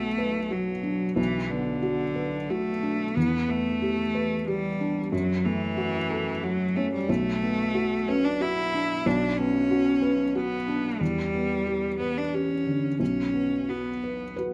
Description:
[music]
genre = neoclassical piano and strings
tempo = 92 BPM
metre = 3/4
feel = rubato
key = B minor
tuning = A4 = 439 Hz
[part]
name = clear cello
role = second line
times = 0.0-14.4 s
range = D3 to E4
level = -29 LUFS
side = equal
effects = none
[part]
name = felt-muted upright piano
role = accompaniment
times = 0.0-14.5 s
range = B1 to B4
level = -30 LUFS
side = equal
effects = none
[sound]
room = moderate plate reverb, RT60 3.0 s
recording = rough home demo mix, lossy compression artefacts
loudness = -27 LUFS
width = mono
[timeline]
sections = 0.0-14.5 A section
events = none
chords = 0.0 Bm7; 3.2 Em7; 5.1 F#m7; 7.1 Bm7; 11.0 Em7; 13.0 B5

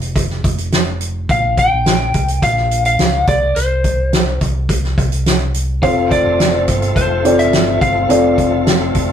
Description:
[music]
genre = piano-driven pop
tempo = 106 BPM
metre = 4/4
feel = straight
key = F major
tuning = A4 = 439 Hz
[part]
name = fingered electric bass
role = bass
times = 0.0-9.1 s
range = F1 to Db2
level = -19 LUFS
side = equal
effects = none
[part]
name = soft-mallet drum kit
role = drums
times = 0.0-9.1 s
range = hi-hat, kick drum, snare drum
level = -17 LUFS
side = right 1 dB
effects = none
[part]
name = lightly driven lead guitar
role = melody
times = 1.3-8.9 s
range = C5 to G5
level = -16 LUFS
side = left 1 dB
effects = none
[part]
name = felt-muted upright piano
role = accompaniment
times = 5.8-9.1 s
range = C4 to D5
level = -15 LUFS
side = left 2 dB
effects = none
[part]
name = bright tonewheel organ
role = sustained chords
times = 5.8-9.1 s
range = C3 to F4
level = -22 LUFS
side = left 1 dB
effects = overdrive, chorus vibrato, fast rotary speaker
[sound]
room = moderate studio reverb, RT60 0.6 s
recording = rough rehearsal-room recording, tube saturation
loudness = -12 LUFS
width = side -9 dB against mid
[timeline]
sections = 0.0-9.1 A section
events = none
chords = 0.0 N.C.; 1.3 Bbm; 3.3 N.C.; 5.8 F

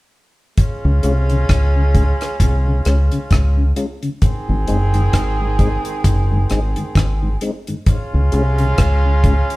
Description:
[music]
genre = roots reggae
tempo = 66 BPM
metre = 4/4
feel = swing 58% on 16ths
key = Db major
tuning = A4 = 440 Hz
[part]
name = warm horn section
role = second line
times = 0.6-9.6 s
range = Eb3 to Ab4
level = -24 LUFS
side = right 2 dB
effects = none
[part]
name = deep reggae drum kit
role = drums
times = 0.6-9.6 s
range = hi-hat, kick drum, rim click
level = -16 LUFS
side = equal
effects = none
[part]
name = mellow tonewheel organ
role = accompaniment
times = 0.8-9.3 s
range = Ab2 to F4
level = -24 LUFS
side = left 2 dB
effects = chorus vibrato, stopped rotary speaker, analog delay
[part]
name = deep dub fingered electric bass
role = bass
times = 0.8-9.4 s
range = Gb1 to Db2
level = -16 LUFS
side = equal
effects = none
[sound]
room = moderate stone room reverb, RT60 1.0 s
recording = band playing live in one room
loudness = -14 LUFS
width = side -20 dB against mid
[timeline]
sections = 0.6-9.6 A section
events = none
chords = 0.6 Db; 4.2 Ab; 7.9 Db

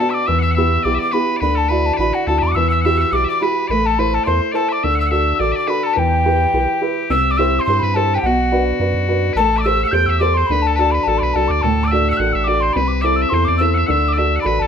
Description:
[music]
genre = celtic folk, Celtic reel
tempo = 212 BPM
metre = 4/4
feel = swing 55% on 8ths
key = unclear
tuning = A4 = 442 Hz
[part]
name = mellow hollow mid whistle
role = melody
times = 0.0-14.7 s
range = F#5 to G6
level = -18 LUFS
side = left 1 dB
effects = none
[part]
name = loud bright bagpipes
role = second line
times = 0.0-14.7 s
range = F#4 to G5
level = -24 LUFS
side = left 4 dB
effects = none
[part]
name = dark upright piano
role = accompaniment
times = 0.0-14.7 s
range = A2 to C5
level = -19 LUFS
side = equal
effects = none
[part]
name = warm sub bass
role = bass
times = 0.3-14.7 s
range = A1 to G2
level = -20 LUFS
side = equal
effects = none
[sound]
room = moderate studio reverb, RT60 0.9 s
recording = none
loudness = -14 LUFS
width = side -7 dB against mid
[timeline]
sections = 0.0-7.1 A section; 7.1-14.7 B section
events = none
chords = 0.3 Em; 1.4 Dadd9; 2.6 Emadd9; 3.7 Am; 4.8 D; 6.0 Em; 7.1 C; 8.2 Bm; 9.4 Am7; 10.5 D; 12.8 Am/C; 13.9 D

